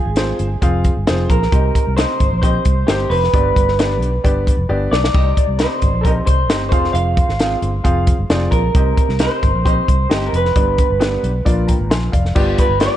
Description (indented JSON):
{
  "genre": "uptempo 1960s-style soul",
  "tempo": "133 BPM",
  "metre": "4/4",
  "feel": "straight",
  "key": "C minor",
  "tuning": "A4 = 440 Hz",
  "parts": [
    { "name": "electric guitar through a small old amp", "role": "melody", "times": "0.0-13.0 s", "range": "G4 to F5", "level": "-20 LUFS", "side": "right 1 dB", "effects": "spring reverb, tape echo" },
    { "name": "clear grand piano", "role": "accompaniment", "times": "0.0-13.0 s", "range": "G2 to C6", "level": "-23 LUFS", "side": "left 1 dB", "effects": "none" },
    { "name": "fingered electric bass", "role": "bass", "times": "0.1-12.9 s", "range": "F1 to C2", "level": "-19 LUFS", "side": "equal", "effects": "none" },
    { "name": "compact cocktail drum kit", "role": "drums", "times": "0.2-12.9 s", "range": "crash cymbal, hi-hat, kick drum, snare drum, splash cymbal", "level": "-17 LUFS", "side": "equal", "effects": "none" }
  ],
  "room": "little or no reverb",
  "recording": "nothing above 10.5 kHz",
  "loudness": "-13 LUFS",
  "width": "side -12 dB against mid",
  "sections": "0.0-12.4 A section",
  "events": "drum fill 4.7-5.1",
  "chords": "0.0 Fm; 1.5 Cm; 3.3 G; 5.1 Cm; 6.7 Fm; 8.8 Cm; 10.6 G; 11.5 Bb; 12.4 G7"
}